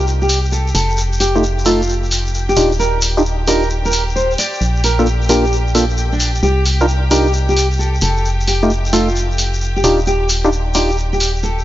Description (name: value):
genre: UK garage, two-step garage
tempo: 132 BPM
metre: 4/4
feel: swing 67% on 16ths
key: unclear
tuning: A4 = 442 Hz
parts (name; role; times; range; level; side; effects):
- nylon-string guitar; melody; 0.0-11.6 s; D4 to D5; -20 LUFS; equal; analog delay
- rich chamber violin section; sustained chords; 0.0-11.6 s; G4 to G5; -28 LUFS; left 1 dB; low-pass filter
- organ-like FM bass; bass; 0.0-11.6 s; Eb1 to C2; -17 LUFS; equal; none
- shekere; percussion; 0.1-11.6 s; none; -24 LUFS; left 2 dB; none
- electronic hi-hat; drums; 0.3-11.3 s; none; -21 LUFS; equal; none
- percussive organ stab; stabs; 1.4-10.9 s; A3 to Bb4; -18 LUFS; equal; chorus
room: light reverb, studio ambience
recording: dry, gritty hardware recording, nothing above 7.5 kHz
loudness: -13 LUFS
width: side -14 dB against mid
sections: 0.0-11.6 A section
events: filter sweep on synth stab 0.0-11.6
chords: 0.0 C5; 0.7 F9; 2.6 Ebmaj9; 4.6 Bbmaj7; 6.4 Cm11; 8.0 F9; 9.8 Ebmaj9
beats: 0.07 0.52 | 0.98 1.43 1.89 2.34 | 2.79 3.25 3.70 4.16 | 4.61 5.07 5.52 5.98 | 6.43 6.88 7.34 7.79 | 8.25 8.70 9.16 9.61 | 10.07 10.52 10.98 11.43